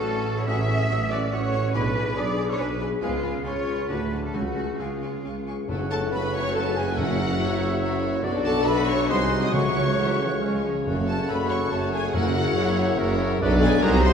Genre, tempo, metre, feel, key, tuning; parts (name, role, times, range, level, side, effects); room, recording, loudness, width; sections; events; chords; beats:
classical, dramatic, fast romantic movement for symphony orchestra; 141 BPM; 3/4; rubato; F# minor; A4 = 439 Hz
dark symphonic violin section; melody; 0.0-14.1 s; F#5 to D#6; -33 LUFS; left 3 dB
mellow flute section; second line; 0.0-14.1 s; E#5 to E6; -35 LUFS; equal
warm clarinet; second line; 0.0-14.1 s; A3 to E5; -34 LUFS; left 1 dB
warm cor anglais; second line; 0.0-14.1 s; G#3 to F#5; -36 LUFS; right 2 dB
warm symphonic violin section; second line; 0.0-14.1 s; A3 to G#5; -37 LUFS; left 3 dB
warm symphonic viola section; accompaniment; 0.0-14.1 s; C#4 to D#5; -32 LUFS; left 1 dB
clear trombone section; sustained chords; 0.0-14.1 s; G#2 to B3; -33 LUFS; right 2 dB
mellow French horn section; sustained chords; 0.0-14.1 s; G#3 to G#4; -32 LUFS; left 3 dB
concert harp; arpeggios; 0.0-14.1 s; F#2 to C#6; -33 LUFS; left 6 dB
clear symphonic cello section; bass; 0.0-14.1 s; F#2 to E5; -31 LUFS; right 2 dB
rich symphonic double bass section; bass; 0.0-14.1 s; F#1 to D2; -29 LUFS; right 1 dB
warm tuba; bass; 0.0-14.1 s; F#1 to D2; -30 LUFS; right 2 dB
timpani; percussion; 4.3-12.7 s; F#2 to C#3; -33 LUFS; left 1 dB
mellow bassoon; accompaniment; 5.7-14.1 s; C#3 to A#3; -35 LUFS; right 2 dB
warm trumpet section; stabs; 5.7-14.1 s; F#4 to D5; -33 LUFS; equal
tam-tam; percussion; 5.7-7.4 s; -39 LUFS; left 2 dB
wet scoring stage reverb, RT60 2.0 s; heard from further back in the room; -22 LUFS; side -7 dB against mid
0.0-5.7 A section; 5.7-14.1 B section
band accent 5.7-6.1
0.0 F#m/A; 1.7 G#dim/B; 3.0 C#7; 3.9 D; 4.3 C#; 5.7 F#m; 7.0 F#7; 8.2 Bm7; 9.1 G#7/B#; 9.5 F#m/C#; 10.4 C#; 10.9 F#m; 12.1 F#7; 13.4 Bm7
0.06 | 0.48 0.90 1.32 | 1.75 2.17 2.60 | 3.02 3.46 3.90 | 4.34 4.80 5.25 | 5.69 6.13 6.55 | 6.98 7.40 7.82 | 8.24 8.66 9.09 | 9.53 9.98 10.42 | 10.86 11.29 11.72 | 12.14 12.56 12.99 | 13.41 13.84